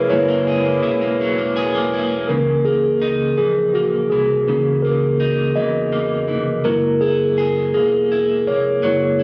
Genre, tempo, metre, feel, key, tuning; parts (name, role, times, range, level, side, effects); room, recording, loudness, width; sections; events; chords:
slow six-eight R&B; 55 BPM (dotted quarters); 6/8; straight; C# dorian; A4 = 442 Hz
electric guitar at the edge of break-up; second line; 0.0-9.2 s; C#3 to G#4; -28 LUFS; equal; tremolo
mellow tine electric piano; accompaniment; 0.0-9.2 s; E3 to D#5; -19 LUFS; equal
warm horn section; stabs; 0.0-1.9 s; C#3 to E4; -29 LUFS; equal
fingered electric bass; bass; 0.0-9.2 s; E1 to E2; -29 LUFS; equal
light reverb, digital ambience; recorded on a phone in the room, studio reverb, compression; -18 LUFS; mono
0.0-2.3 A section; 2.3-9.2 B section
tine electric piano solo 0.0-2.3, 2.3-9.2
0.0 F#9; 2.3 C#m69; 6.7 F#9